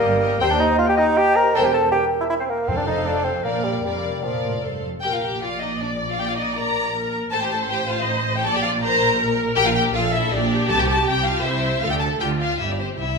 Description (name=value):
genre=quick classical-period movement for symphony orchestra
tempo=158 BPM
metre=3/4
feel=straight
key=Bb major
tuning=A4 = 440 Hz
part: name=dark chamber violin section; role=melody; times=0.0-13.2 s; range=C5 to Bb5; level=-24 LUFS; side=left 2 dB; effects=none
part: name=clear clarinet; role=second line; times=0.0-4.6 s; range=F4 to Bb5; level=-27 LUFS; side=left 2 dB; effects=none
part: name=mellow hollow concert flute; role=second line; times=0.0-4.8 s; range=A4 to Eb5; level=-28 LUFS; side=equal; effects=none
part: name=warm studio violin section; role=second line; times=0.0-13.2 s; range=C4 to D5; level=-27 LUFS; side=left 4 dB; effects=none
part: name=clear bassoon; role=accompaniment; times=0.0-4.6 s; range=F3 to Bb4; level=-20 LUFS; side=right 1 dB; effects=none
part: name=rich chamber viola section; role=accompaniment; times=0.0-13.2 s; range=E4 to D5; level=-27 LUFS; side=equal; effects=none
part: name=dark French horn section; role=sustained chords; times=0.0-4.8 s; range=G4 to D5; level=-27 LUFS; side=left 1 dB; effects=none
part: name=rich chamber double bass section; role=bass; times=0.0-13.2 s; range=E1 to Eb2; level=-29 LUFS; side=right 2 dB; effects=none
part: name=rich studio cello section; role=bass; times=0.0-13.2 s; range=Eb2 to D3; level=-29 LUFS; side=right 3 dB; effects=none
part: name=timpani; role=percussion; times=2.7-3.2, 10.7-11.2 s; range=F2 to C3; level=-32 LUFS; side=left 1 dB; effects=none
room=wet recital hall reverb, RT60 1.4 s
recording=minimal, uncompressed stereo recording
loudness=-18 LUFS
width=side -4 dB against mid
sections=0.0-5.0 A section; 5.0-13.2 B section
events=none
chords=0.4 Cm/Eb; 1.5 C7/E; 2.7 F; 3.5 Bb; 3.8 Bb/F; 4.6 F; 5.0 Bb; 7.3 Am7b5; 8.5 Bb; 10.7 C; 11.8 Dm; 12.6 Cadd9/G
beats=0.04 | 0.41 0.79 1.17 | 1.55 1.92 2.30 | 2.68 3.06 3.45 | 3.85 4.24 4.64 | 5.04 5.43 5.81 | 6.19 6.57 6.95 | 7.33 7.71 8.08 | 8.46 8.83 9.20 | 9.58 9.95 10.32 | 10.70 11.08 11.45 | 11.83 12.21 12.60 | 13.00